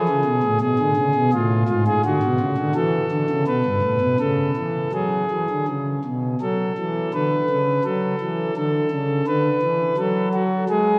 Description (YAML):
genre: classical, chorale-style piece for pipe organ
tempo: 84 BPM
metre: 3/4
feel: straight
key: F# minor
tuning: A4 = 445 Hz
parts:
  - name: pipe organ, principal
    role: solo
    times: 0.0-11.0 s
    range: G2 to B4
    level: -21 LUFS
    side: equal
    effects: none
room: wet church reverb, RT60 3.0 s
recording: none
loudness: -21 LUFS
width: mono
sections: 0.0-11.0 A section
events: none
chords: 0.0 C#7; 2.0 D; 3.5 G; 4.2 C#sus4; 5.7 Bsus2; 6.4 F#m